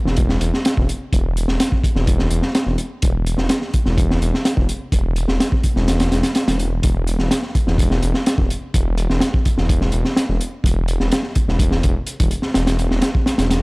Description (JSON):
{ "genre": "breakbeat, breaks", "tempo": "126 BPM", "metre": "4/4", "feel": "straight", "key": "unclear", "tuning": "A4 = 439 Hz", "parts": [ { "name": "detuned saw bass", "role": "bass", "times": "0.1-13.6 s", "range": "E1", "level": "-20 LUFS", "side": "equal", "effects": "none" }, { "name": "crunchy breakbeat drum kit", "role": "drums", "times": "0.1-13.6 s", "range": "hi-hat, kick drum, snare drum", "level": "-18 LUFS", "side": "equal", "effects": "none" } ], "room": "little or no reverb", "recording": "dry, gritty hardware recording, transformer saturation", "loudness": "-16 LUFS", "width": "side -28 dB against mid", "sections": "0.0-13.6 A section", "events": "none", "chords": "none" }